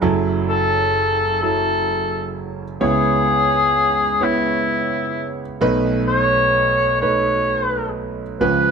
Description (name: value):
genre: acoustic folk-pop ballad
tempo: 43 BPM (dotted quarters)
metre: 6/8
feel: straight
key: F# minor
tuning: A4 = 438 Hz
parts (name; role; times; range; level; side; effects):
- warm concert grand piano; accompaniment; 0.0-8.7 s; F#1 to C#5; -20 LUFS; right 3 dB; none
- warm cor anglais; melody; 0.5-8.7 s; E4 to C#5; -17 LUFS; left 2 dB; plate reverb
room: light reverb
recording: none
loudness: -16 LUFS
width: side -6 dB against mid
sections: 0.0-8.7 A section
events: none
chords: 0.0 F#m7; 2.8 C#m7; 5.6 B7